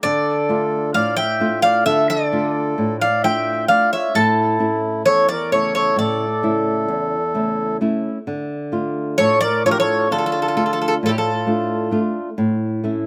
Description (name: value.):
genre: greek folk, Greek bouzouki band.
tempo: 131 BPM (eighths).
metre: 9/8.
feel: straight.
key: D harmonic minor.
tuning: A4 = 439 Hz.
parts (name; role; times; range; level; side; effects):
Greek bouzouki; melody; 0.0-12.0 s; G4 to G5; -21 LUFS; equal; slapback echo.
mellow accordion; second line; 0.0-12.0 s; E4 to E5; -25 LUFS; equal; slapback echo.
flamenco guitar; accompaniment; 0.0-13.1 s; E2 to F4; -24 LUFS; equal; slapback echo.
room: little or no reverb.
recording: recorded outdoors, with no room sound.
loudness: -19 LUFS.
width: mono.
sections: 0.0-8.3 A section; 8.3-13.1 B section.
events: none.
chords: 0.0 Dm; 4.1 A; 8.3 Dm; 12.4 A.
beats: | 0.03 0.49 0.94 1.40 1.86 2.31 2.77 3.23 3.68 | 4.14 4.60 5.06 5.51 5.97 6.43 6.89 7.34 7.80 | 8.26 8.72 9.18 9.63 10.09 10.55 11.01 11.46 11.92 | 12.38 12.84.